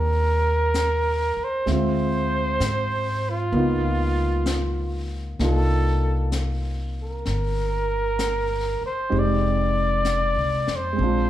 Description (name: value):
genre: jazz ballad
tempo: 64 BPM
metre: 4/4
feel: swing 67% on 8ths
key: unclear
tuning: A4 = 442 Hz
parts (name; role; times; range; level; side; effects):
- warm flugelhorn; melody; 0.0-11.3 s; F4 to D5; -25 LUFS; right 1 dB; none
- warm concert grand piano; accompaniment; 0.0-11.3 s; Ab3 to G5; -27 LUFS; right 2 dB; none
- upright bass; bass; 0.0-11.3 s; F1 to Ab2; -24 LUFS; equal; none
- jazz brush drum kit; drums; 0.7-11.3 s; brushed snare drum, hi-hat, snare drum; -34 LUFS; left 3 dB; none
room: moderate large studio reverb, RT60 1.1 s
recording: heard from further back in the room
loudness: -21 LUFS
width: side -12 dB against mid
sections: 0.0-11.3 A section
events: none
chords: 0.0 Abmaj13 (rootless); 1.7 Dm7b5; 3.5 Db13; 5.4 Cm11; 9.1 Fm9